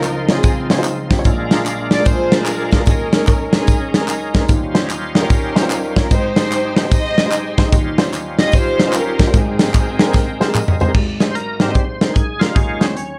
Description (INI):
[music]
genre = uptempo gospel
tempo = 149 BPM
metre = 4/4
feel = swing 64% on 8ths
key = Ab major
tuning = A4 = 439 Hz
[part]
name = warm studio string section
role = melody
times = 0.0-10.6 s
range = C4 to Eb5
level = -24 LUFS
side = equal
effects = analog delay
[part]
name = warm upright piano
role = accompaniment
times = 0.0-13.2 s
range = Ab1 to Eb5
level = -24 LUFS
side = equal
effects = none
[part]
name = overdriven tonewheel organ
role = sustained chords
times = 0.0-13.2 s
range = Ab2 to Ab5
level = -27 LUFS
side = equal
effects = slow rotary speaker, chorus vibrato
[part]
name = modern studio drum kit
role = drums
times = 0.0-13.1 s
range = crash cymbal, hi-hat, kick drum, snare drum, toms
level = -18 LUFS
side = equal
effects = vintage 12-bit sampler grit
[part]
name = handclaps and tambourine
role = percussion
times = 0.0-10.9 s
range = none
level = -32 LUFS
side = equal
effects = none
[sound]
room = moderate studio reverb, RT60 0.6 s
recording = cassette tape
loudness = -16 LUFS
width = mono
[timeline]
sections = 0.0-10.9 A section; 10.9-13.2 B section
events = tonewheel organ fill 9.7-10.9; drum fill 10.1-10.9; tonewheel organ solo 10.9-13.2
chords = 0.0 Dbmaj9; 1.3 Bb7; 2.9 Eb7sus4; 4.5 Eb13; 6.1 Abmaj7; 7.7 Eb13; 9.3 Abmaj9; 12.6 Eb9sus4